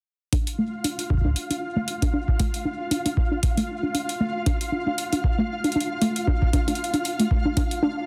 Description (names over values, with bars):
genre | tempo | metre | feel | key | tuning
IDM | 116 BPM | 4/4 | swing 56% on 16ths | D minor | A4 = 441 Hz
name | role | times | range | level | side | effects
warbly dusty pluck | arpeggios | 0.3-7.9 s | A3 to D4 | -28 LUFS | equal | chorus, delay
electronic hi-hat | drums | 0.3-7.8 s | none | -33 LUFS | equal | none
electronic kick drum | drums | 0.3-7.7 s | none | -25 LUFS | equal | none
flickering grainy texture | texture | 0.6-8.1 s | F4 to F5 | -33 LUFS | equal | built-in reverb
room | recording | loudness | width
moderate echo chamber reverb, RT60 2.0 s | dense, heavily limited modern master | -24 LUFS | mono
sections
0.3-8.1 A section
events
none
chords
0.3 Dm/A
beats
| 0.33 0.84 1.36 1.88 | 2.40 2.91 3.43 3.95 | 4.46 4.98 5.50 6.01 | 6.53 7.05 7.57